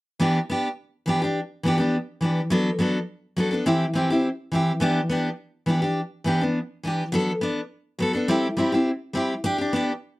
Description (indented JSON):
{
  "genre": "highlife",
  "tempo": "104 BPM",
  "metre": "4/4",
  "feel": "straight",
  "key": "G major",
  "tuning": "A4 = 440 Hz",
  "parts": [
    { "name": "picked steel-string acoustic guitar", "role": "solo", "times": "0.2-9.9 s", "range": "E3 to A4", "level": "-21 LUFS", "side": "equal", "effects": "none" }
  ],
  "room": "light reverb",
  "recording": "dry, close 1970s-style studio recording",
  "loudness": "-22 LUFS",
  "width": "side -20 dB against mid",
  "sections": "0.2-9.4 A section",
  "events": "none",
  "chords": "0.2 G6; 2.5 D6; 3.7 C/E; 4.8 G6; 7.1 D6; 8.3 C; 9.4 G"
}